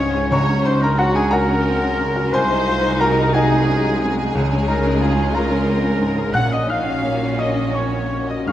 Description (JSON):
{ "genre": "classical, romantic movement for piano and orchestra", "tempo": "59 BPM (dotted quarters)", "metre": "12/8", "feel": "rubato", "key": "unclear", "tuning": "A4 = 440 Hz", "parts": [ { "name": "rich chamber violin section", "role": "melody", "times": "0.0-8.5 s", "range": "Gb4 to Gb5", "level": "-29 LUFS", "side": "left 3 dB", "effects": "none" }, { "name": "warm grand piano", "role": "melody", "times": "0.0-8.5 s", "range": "C2 to Gb6", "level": "-20 LUFS", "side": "left 1 dB", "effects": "none" }, { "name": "clear oboe", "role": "second line", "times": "0.0-8.5 s", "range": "Gb4 to Gb5", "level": "-29 LUFS", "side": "right 1 dB", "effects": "none" }, { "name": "mellow hollow concert flute", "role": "second line", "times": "0.0-8.5 s", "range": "Gb4 to Gb5", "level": "-30 LUFS", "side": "equal", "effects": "none" }, { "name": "rich studio violin section", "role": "second line", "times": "0.0-8.5 s", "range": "Db4 to Ab4", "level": "-31 LUFS", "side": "equal", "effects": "none" }, { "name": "warm clarinet", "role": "second line", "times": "0.0-8.5 s", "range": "Gb4 to Gb5", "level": "-29 LUFS", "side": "equal", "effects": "none" }, { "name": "rich chamber viola section", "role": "accompaniment", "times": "0.0-8.5 s", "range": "Ab3 to Eb4", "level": "-27 LUFS", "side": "left 1 dB", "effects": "none" }, { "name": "dark French horn section", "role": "sustained chords", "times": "0.0-8.5 s", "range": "F3 to Eb4", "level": "-29 LUFS", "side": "left 3 dB", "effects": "none" }, { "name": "rich chamber cello section", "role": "bass", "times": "0.0-8.5 s", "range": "C2 to Bb2", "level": "-25 LUFS", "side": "right 2 dB", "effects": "none" }, { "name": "rich symphonic double bass section", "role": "bass", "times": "0.0-8.5 s", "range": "Ab1 to Db2", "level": "-25 LUFS", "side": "right 3 dB", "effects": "none" }, { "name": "timpani", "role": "percussion", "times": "0.3-8.5 s", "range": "Ab2 to Db3", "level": "-30 LUFS", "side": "right 1 dB", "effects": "none" } ], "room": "wet recital hall reverb, RT60 1.4 s", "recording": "none", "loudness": "-16 LUFS", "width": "side -12 dB against mid", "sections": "0.0-8.5 A section", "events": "none", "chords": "0.3 Gb/Db; 2.3 Ab7/C; 4.4 Db; 6.3 Gb/Bb", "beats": "| 0.31 1.32 2.33 3.34 | 4.35 5.34 6.34 7.38 | 8.48" }